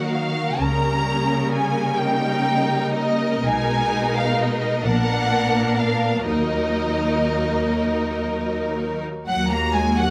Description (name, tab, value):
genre	classical, slow romantic movement for string orchestra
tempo	38-45 BPM (dotted quarters)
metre	6/8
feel	rubato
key	Eb minor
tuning	A4 = 440 Hz
part	warm symphonic violin section	melody	0.0-10.1 s	Eb5 to Bb5	-27 LUFS	equal	none
part	clear symphonic violin section	second line	0.0-10.1 s	Db4 to Bb5	-28 LUFS	equal	none
part	warm symphonic viola section	accompaniment	0.0-10.1 s	Gb3 to Gb4	-28 LUFS	equal	none
part	rich symphonic cello section	bass	0.0-10.1 s	Eb2 to Bb3	-27 LUFS	equal	none
part	clear symphonic double bass section	bass	0.6-10.1 s	Bb1 to Eb2	-30 LUFS	equal	none
room	moderate scoring stage reverb, RT60 1.8 s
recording	close, detailed microphones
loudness	-21 LUFS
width	mono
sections	0.0-9.3 A section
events	none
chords	0.0 Ebm; 0.6 Eb7/Db; 3.4 Abm/Cb; 4.8 Bb; 6.3 Ebm